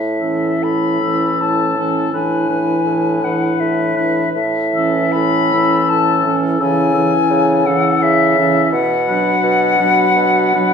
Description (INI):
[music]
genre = classical, slow romantic movement for wind quintet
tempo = 82 BPM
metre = 3/4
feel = uneven beats, rubato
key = A major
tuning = A4 = 440 Hz
[part]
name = silver concert flute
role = melody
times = 0.0-10.7 s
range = E5 to B5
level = -17 LUFS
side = left 5 dB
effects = none
[part]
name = mellow bassoon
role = bass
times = 0.0-10.7 s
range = A2 to C#3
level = -19 LUFS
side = right 2 dB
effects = none
[part]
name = warm oboe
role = second line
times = 0.2-10.7 s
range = A4 to B4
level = -22 LUFS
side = left 3 dB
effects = none
[part]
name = mellow French horn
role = accompaniment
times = 0.2-10.7 s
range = E3 to F#3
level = -21 LUFS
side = equal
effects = none
[part]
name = mellow clarinet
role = accompaniment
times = 0.2-10.7 s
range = C#4 to D4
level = -22 LUFS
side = right 7 dB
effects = none
[sound]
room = wet recital hall reverb, RT60 1.5 s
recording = minimal, uncompressed stereo recording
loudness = -13 LUFS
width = side -6 dB against mid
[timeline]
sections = 0.0-10.7 A section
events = none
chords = 0.0 A; 2.1 E7/A; 4.4 A; 6.6 A/C#; 8.7 Bm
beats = 0.63 1.41 | 2.14 2.87 3.61 | 4.36 5.16 5.90 | 6.60 7.31 8.02 | 8.73 9.44 10.16